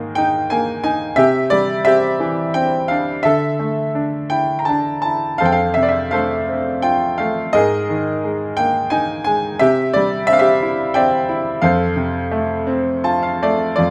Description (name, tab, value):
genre	classical, lyrical solo piano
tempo	79-90 BPM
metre	3/4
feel	rubato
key	F major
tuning	A4 = 440 Hz
part	bright grand piano	solo	0.0-13.9 s	F2 to Bb5	-18 LUFS	equal	none
room	moderate recital hall reverb, RT60 1.4 s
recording	none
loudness	-18 LUFS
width	mono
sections	0.0-13.8 A section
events	grand piano fill 12.7-13.8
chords	0.0 Absus2; 1.2 Cadd9; 3.2 Dsus2; 5.4 F; 7.5 Absus2; 9.6 Cadd9; 11.6 F